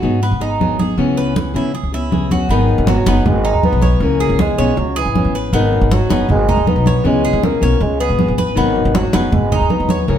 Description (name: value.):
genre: latin, Cuban son and guajira.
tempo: 158 BPM.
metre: 4/4.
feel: straight.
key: G# minor.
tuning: A4 = 439 Hz.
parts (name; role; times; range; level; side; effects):
fingerpicked plugged-in steel-string acoustic guitar; accompaniment; 0.0-10.2 s; C#3 to G#4; -20 LUFS; left 2 dB; none.
Cuban tres; arpeggios; 0.0-10.2 s; B3 to C#5; -22 LUFS; right 2 dB; none.
upright bass; bass; 0.0-10.2 s; F#1 to C#3; -18 LUFS; equal; none.
congas; percussion; 0.0-10.2 s; none; -19 LUFS; equal; none.
dark bassoon; melody; 2.5-10.2 s; D#3 to B3; -19 LUFS; left 1 dB; plate reverb.
room: wet studio reverb, RT60 0.9 s.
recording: heard from further back in the room.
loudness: -13 LUFS.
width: side -9 dB against mid.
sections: 0.0-2.5 A section; 2.5-10.2 B section.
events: none.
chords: 0.0 G#m7; 1.0 C#m7; 2.5 G#m7; 4.0 C#m7; 5.5 G#m7; 7.0 C#m7; 8.6 G#m7.